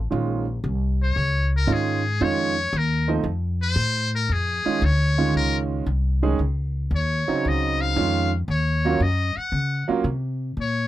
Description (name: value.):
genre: jazz, small-group swing and bop.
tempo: 115 BPM.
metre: 4/4.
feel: swing 69% on 8ths.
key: Bb minor.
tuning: A4 = 439 Hz.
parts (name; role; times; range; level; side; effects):
upright bass; bass; 0.0-10.9 s; Bb1 to Db3; -23 LUFS; left 1 dB; none.
clear concert grand piano; accompaniment; 0.1-10.0 s; Db3 to Ab4; -24 LUFS; right 6 dB; none.
trumpet with metal mute; melody; 1.0-10.9 s; Ab4 to Gb5; -25 LUFS; left 3 dB; none.
room: little or no reverb.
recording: dry, close 1970s-style studio recording.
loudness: -20 LUFS.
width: side -14 dB against mid.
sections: 0.0-4.3 A section; 4.3-10.9 A section.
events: muted trumpet solo 0.0-10.9.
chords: 0.1 Bbm7; 3.3 F; 4.3 Bbm11 (rootless); 8.5 Ebm7.